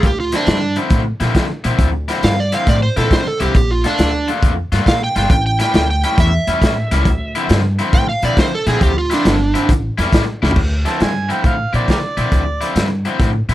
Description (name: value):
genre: electric blues shuffle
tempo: 137 BPM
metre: 4/4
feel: swing 67% on 8ths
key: D minor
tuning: A4 = 440 Hz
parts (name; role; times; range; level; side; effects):
- overdriven slide guitar; melody; 0.0-9.7 s; D4 to G5; -19 LUFS; right 3 dB; slapback echo
- cranked stack guitar; riff; 0.0-13.5 s; A2 to F4; -20 LUFS; left 3 dB; overdrive
- upright bass; bass; 0.0-13.5 s; G1 to D3; -18 LUFS; equal; none
- crunchy breakbeat drum kit; drums; 0.0-13.5 s; crash cymbal, hi-hat, kick drum, snare drum, toms; -17 LUFS; equal; none
- overdriven harmonica; second line; 10.9-12.7 s; G4 to A5; -22 LUFS; right 4 dB; none
room: little or no reverb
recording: none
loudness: -13 LUFS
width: side -14 dB against mid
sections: 0.0-10.6 A section; 10.6-13.5 A section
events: electric slide guitar solo 0.0-10.6; drum fill 10.3; harmonica solo 10.6-13.5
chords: 0.0 Dm9; 3.5 Bbmaj7; 5.3 A7; 7.1 Dm9; 9.7 A7; 10.6 Dm9